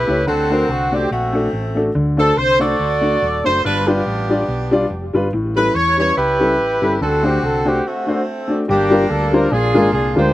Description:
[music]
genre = uptempo gospel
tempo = 143 BPM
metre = 4/4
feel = swing 55% on 8ths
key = unclear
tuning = A4 = 440 Hz
[part]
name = warm horn section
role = melody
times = 0.0-10.3 s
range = A3 to D5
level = -17 LUFS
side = equal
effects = slapback echo
[part]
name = hollow-body short-scale fingered electric bass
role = bass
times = 0.0-10.3 s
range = Eb1 to E2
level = -22 LUFS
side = right 1 dB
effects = none
[part]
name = warm upright piano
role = accompaniment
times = 0.1-10.3 s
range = G2 to D5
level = -18 LUFS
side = left 2 dB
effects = none
[sound]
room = little or no reverb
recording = recorded outdoors, with no room sound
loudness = -14 LUFS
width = side -15 dB against mid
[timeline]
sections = 0.0-8.7 A section; 8.7-10.3 B section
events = break 7.9-8.7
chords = 0.3 D7; 3.6 G7; 5.3 A7; 7.0 D7; 8.7 Gm7; 9.5 Bb7

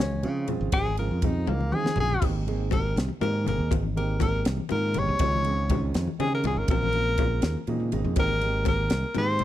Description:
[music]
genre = electric jazz fusion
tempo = 81 BPM (dotted quarters)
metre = 6/8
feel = straight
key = unclear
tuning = A4 = 440 Hz
[part]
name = warm tenor saxophone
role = melody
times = 0.0-9.4 s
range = Bb3 to Db5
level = -28 LUFS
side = left 2 dB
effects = slapback echo
[part]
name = warm baby grand piano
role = accompaniment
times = 0.0-9.4 s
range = Db3 to C5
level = -32 LUFS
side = right 6 dB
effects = none
[part]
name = modern bright fingered electric bass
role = bass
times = 0.0-9.4 s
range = G1 to Db3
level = -27 LUFS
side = equal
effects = none
[part]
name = crisp fusion drum kit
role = drums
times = 0.0-9.4 s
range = crash cymbal, kick drum, ride cymbal, snare drum, toms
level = -28 LUFS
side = equal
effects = none
[part]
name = congas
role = percussion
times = 0.1-9.4 s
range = none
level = -33 LUFS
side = left 12 dB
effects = none
[sound]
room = small room ambience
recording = dry, close 1970s-style studio recording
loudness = -23 LUFS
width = side -13 dB against mid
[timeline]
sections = 0.0-2.2 A section; 2.2-9.4 A section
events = tenor saxophone solo 0.0-9.4; drum fill 1.5-2.2, 7.6-8.2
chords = 0.0 Dbmaj9; 2.2 Abmaj9; 5.2 Dbmaj9; 6.7 Bbm9; 8.2 Abmaj9

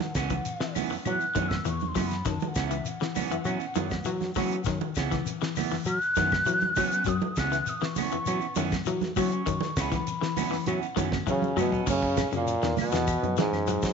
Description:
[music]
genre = afrobeat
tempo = 100 BPM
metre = 4/4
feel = straight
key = unclear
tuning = A4 = 440 Hz
[part]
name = mellow hollow concert flute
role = melody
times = 0.0-11.0 s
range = E5 to F#6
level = -30 LUFS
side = left 1 dB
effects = none
[part]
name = electric guitar at the edge of break-up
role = arpeggios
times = 0.0-13.9 s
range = C#3 to F#3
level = -33 LUFS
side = left 13 dB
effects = lush chorus
[part]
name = damped 70s drum kit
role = drums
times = 0.0-13.9 s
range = crash cymbal, hi-hat, kick drum, snare drum, toms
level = -34 LUFS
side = equal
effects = none
[part]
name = congas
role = percussion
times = 0.0-13.8 s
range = none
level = -33 LUFS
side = right 13 dB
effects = none
[part]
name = shekere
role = percussion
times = 0.0-13.9 s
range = none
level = -39 LUFS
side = left 10 dB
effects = none
[part]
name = electric guitar at the edge of break-up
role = stabs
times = 0.2-11.9 s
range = E3 to C#4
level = -34 LUFS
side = right 12 dB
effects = none
[part]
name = plucky analog bass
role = bass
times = 0.2-13.9 s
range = C#2 to F#3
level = -32 LUFS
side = equal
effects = none
[part]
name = claves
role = percussion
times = 0.2-13.7 s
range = none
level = -42 LUFS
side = left 13 dB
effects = none
[part]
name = clear trombone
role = melody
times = 11.3-13.9 s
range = G#2 to C#3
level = -28 LUFS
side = equal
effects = none
[part]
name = breathy tenor saxophone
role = second line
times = 11.3-13.9 s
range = G#3 to C#4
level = -33 LUFS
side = right 11 dB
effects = none
[sound]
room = light reverb, studio reverb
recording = 1960s-style stereo with parts hard left and right, nothing above 7.7 kHz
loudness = -25 LUFS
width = side -6 dB against mid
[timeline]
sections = 0.0-11.9 A section; 11.9-13.9 B section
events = flute solo 0.0-11.9; drum fill 11.3-11.9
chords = 0.0 F#7sus4

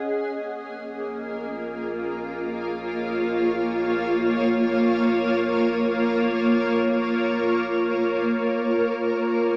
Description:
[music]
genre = ambient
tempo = free time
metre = none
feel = none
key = unclear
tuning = A4 = 439 Hz
[part]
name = granular cloud pad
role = sustained chords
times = 0.0-9.6 s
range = G#3 to D#5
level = -24 LUFS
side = equal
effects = built-in reverb
[part]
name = warm sub bass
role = bass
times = 0.0-9.6 s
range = G#1 to A#1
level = -48 LUFS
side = equal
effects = none
[sound]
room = wet lush hall reverb, RT60 2.7 s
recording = small speaker sound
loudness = -24 LUFS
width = mono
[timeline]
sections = 0.0-9.6 A section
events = none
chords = 0.1 A#m

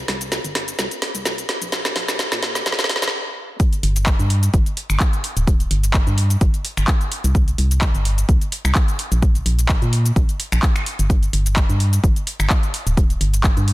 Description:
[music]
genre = piano house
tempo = 128 BPM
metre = 4/4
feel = swing 54% on 16ths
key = G minor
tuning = A4 = 441 Hz
[part]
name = organ-like FM bass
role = bass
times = 0.0-13.7 s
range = D1 to Bb2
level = -19 LUFS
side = equal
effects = sidechain pumping
[part]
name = garage drum kit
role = drums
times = 0.1-13.7 s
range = finger snaps, handclaps, hi-hat, shaker, snare drum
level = -22 LUFS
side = equal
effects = none
[part]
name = electronic kick drum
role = drums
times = 3.6-13.5 s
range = none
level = -17 LUFS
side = equal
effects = overdrive
[sound]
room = light reverb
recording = dense, heavily limited modern master, high-pass filter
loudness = -16 LUFS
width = side -18 dB against mid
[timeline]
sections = 0.0-3.6 A section; 3.6-13.7 B section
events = build-up 0.0-3.6; drum fill 0.0-3.1; stop 3.1-3.6; drop 3.6-13.7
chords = none

